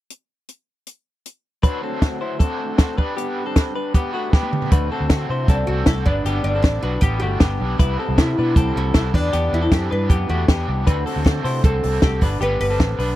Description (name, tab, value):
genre	jangly indie pop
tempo	156 BPM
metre	4/4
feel	straight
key	D mixolydian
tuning	A4 = 440 Hz
part	compact cocktail drum kit	drums	0.1-13.1 s	hi-hat, kick drum, snare drum, toms	-16 LUFS	equal	none
part	overdriven electric guitar	accompaniment	1.6-13.2 s	G2 to C5	-28 LUFS	right 5 dB	harmonic tremolo
part	direct-recorded clean electric guitar	arpeggios	1.6-13.2 s	A3 to C5	-26 LUFS	left 5 dB	wide subtle chorus, tape echo
part	vintage muted fingered electric bass	bass	4.7-13.2 s	G1 to D3	-22 LUFS	equal	none
part	oud	melody	5.1-13.2 s	C4 to B4	-25 LUFS	equal	none
room	little or no reverb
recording	dry, close 1970s-style studio recording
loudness	-17 LUFS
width	side -14 dB against mid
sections	0.1-1.6 A section; 1.6-4.7 B section; 4.7-13.2 C section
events	drum fill 4.3-4.7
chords	0.1 N.C.; 1.6 D7; 3.0 G; 4.7 D7; 6.1 G; 7.8 Cmaj7; 9.1 Em7; 10.9 D7; 12.2 G